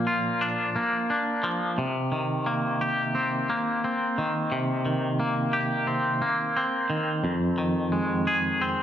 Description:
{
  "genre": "rock",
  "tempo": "88 BPM",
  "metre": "4/4",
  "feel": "straight",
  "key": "C minor",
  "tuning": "A4 = 439 Hz",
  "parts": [
    { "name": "twangy electric guitar", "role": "solo", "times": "0.0-8.8 s", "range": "F2 to Ab4", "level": "-24 LUFS", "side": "equal", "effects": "harmonic tremolo, slapback echo" }
  ],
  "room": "moderate lush hall reverb, RT60 1.6 s, digital ambience",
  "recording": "big arena sound",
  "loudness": "-24 LUFS",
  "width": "side -10 dB against mid",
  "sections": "0.0-8.8 A section",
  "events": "none",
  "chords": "0.0 Bb; 1.8 Cm7; 7.2 Fm7"
}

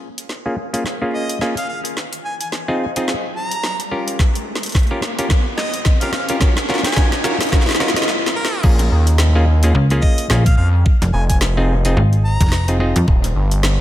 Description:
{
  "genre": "glitch hop",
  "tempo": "108 BPM",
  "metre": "4/4",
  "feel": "swing 58% on 16ths",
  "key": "Bb minor",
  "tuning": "A4 = 440 Hz",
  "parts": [
    { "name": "riser", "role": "sound effects", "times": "1.6-8.1 s", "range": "none", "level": "-26 LUFS", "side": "equal", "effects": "none" },
    { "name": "drum and bass drum kit", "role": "drums", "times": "0.2-13.8 s", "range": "crash cymbal, hi-hat, snare drum", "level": "-23 LUFS", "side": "equal", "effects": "overdrive, studio reverb" },
    { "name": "clav", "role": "stabs", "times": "0.5-13.0 s", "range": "Bb3 to Bb4", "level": "-22 LUFS", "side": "equal", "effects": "vintage 12-bit sampler grit, sidechain pumping, low-pass filter, ping-pong delay" },
    { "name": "bright harmonica", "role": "melody", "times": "1.1-12.7 s", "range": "Bb4 to Bb5", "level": "-27 LUFS", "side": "equal", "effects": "vintage 12-bit sampler grit, ping-pong delay" },
    { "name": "electronic kick drum", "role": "drums", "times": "4.2-13.2 s", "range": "none", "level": "-15 LUFS", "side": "equal", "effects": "overdrive, studio reverb" },
    { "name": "gritty driven synth bass", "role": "bass", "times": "8.6-13.8 s", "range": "Eb1 to F2", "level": "-14 LUFS", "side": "equal", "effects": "none" },
    { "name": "slap-like FM bass", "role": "bass", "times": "9.7-13.1 s", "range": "F1 to F2", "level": "-14 LUFS", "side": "equal", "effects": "none" }
  ],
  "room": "light reverb, digital ambience",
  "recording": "none",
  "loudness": "-14 LUFS",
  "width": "side -13 dB against mid",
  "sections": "0.0-8.6 A section; 8.6-13.8 B section",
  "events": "build-up 0.0-8.6; drum fill 0.0-8.1, 8.1-8.6; filter sweep on clav 0.0-8.6; riser 1.6-8.1; break 8.1-8.6; drop 8.6-13.8",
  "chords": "0.0 Bbm7; 2.0 Fm7; 4.2 Db6; 6.4 Gbmaj7; 8.6 Bbm7; 10.9 Fm7; 13.1 Eb"
}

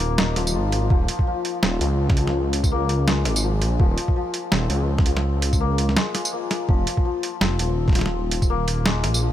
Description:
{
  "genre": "half-time drum and bass",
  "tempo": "166 BPM",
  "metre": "4/4",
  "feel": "swing 59% on 16ths, half-time",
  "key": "unclear",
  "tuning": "A4 = 440 Hz",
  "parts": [
    { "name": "santur", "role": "arpeggios", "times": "0.0-9.3 s", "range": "F3 to F4", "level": "-26 LUFS", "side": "left 5 dB", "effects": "tape echo" },
    { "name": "dark detuned saw bass", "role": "bass", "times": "0.0-9.3 s", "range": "Eb1 to Db2", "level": "-22 LUFS", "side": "equal", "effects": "none" },
    { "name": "boom bap sampler-style drum kit", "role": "drums", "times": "0.0-9.2 s", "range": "hi-hat, snare drum, tambourine", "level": "-24 LUFS", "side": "right 2 dB", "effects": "none" },
    { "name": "electronic kick drum", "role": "drums", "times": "0.9-8.5 s", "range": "none", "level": "-19 LUFS", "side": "equal", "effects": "none" }
  ],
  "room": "little or no reverb",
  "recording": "none",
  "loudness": "-19 LUFS",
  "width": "side -12 dB against mid",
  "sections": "0.0-9.3 A section",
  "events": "break 6.0-6.7",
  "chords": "0.0 Fm; 0.9 Ebsus2; 6.7 Fm"
}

